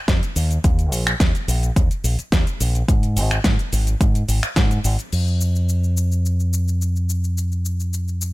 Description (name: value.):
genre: nu-disco, nu disco.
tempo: 107 BPM.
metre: 4/4.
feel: straight.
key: unclear.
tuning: A4 = 445 Hz.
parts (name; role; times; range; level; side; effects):
fingered electric bass with an envelope filter; bass; 0.1-8.3 s; Ab1 to Ab2; -19 LUFS; equal; none.
electronic kick drum; drums; 0.1-4.7 s; none; -18 LUFS; equal; overdrive.
pop drum kit; drums; 0.1-8.3 s; crash cymbal, finger snaps, hi-hat, shaker, snare drum; -25 LUFS; equal; overdrive.
room: little or no reverb.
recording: none.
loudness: -17 LUFS.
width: side -19 dB against mid.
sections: 0.0-5.1 A section; 5.1-8.3 B section.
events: none.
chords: none.